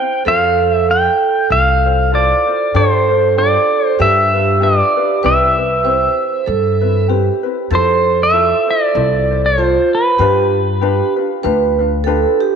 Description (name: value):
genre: Hawaiian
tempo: 97 BPM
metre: 4/4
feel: swing 57% on 8ths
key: C major, F major from 7.7 s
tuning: A4 = 441 Hz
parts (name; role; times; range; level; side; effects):
- pedal steel guitar; melody; 0.0-11.1 s; B4 to G5; -14 LUFS; equal; none
- vibraphone with medium mallets; second line; 0.0-12.6 s; F4 to C5; -17 LUFS; right 9 dB; none
- ukulele; accompaniment; 0.0-12.6 s; C4 to C5; -22 LUFS; left 11 dB; none
- upright bass; bass; 0.3-12.2 s; C2 to G2; -18 LUFS; left 2 dB; none
room: wet echo chamber reverb, RT60 2.4 s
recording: 1960s-style stereo with parts hard left and right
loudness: -12 LUFS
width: side -6 dB against mid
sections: 0.0-7.7 A section; 7.7-12.6 B section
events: none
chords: 0.3 Fmaj7; 2.7 G7sus4; 4.0 G7; 5.2 Cmaj7; 7.7 Fmaj7; 10.2 G7